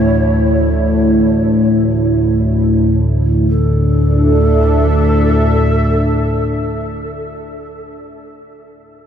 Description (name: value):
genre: dark ambient drone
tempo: free time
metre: none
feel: none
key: unclear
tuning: A4 = 440 Hz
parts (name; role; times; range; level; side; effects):
- breathy mellow long shakuhachi; melody; 0.0-7.8 s; A4 to C#5; -22 LUFS; equal; diffuse ambient delay
- sweeping resonant pad; sustained chords; 0.0-8.1 s; A3 to A5; -16 LUFS; equal; chorus
- analog drone; drone; 0.0-7.8 s; D2 to A2; -14 LUFS; equal; chorus
room: moderate huge ambient reverb, RT60 8.6 s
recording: dark, warm production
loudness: -11 LUFS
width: side -8 dB against mid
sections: 0.0-3.5 A section; 3.5-8.6 B section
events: none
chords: 0.0 D5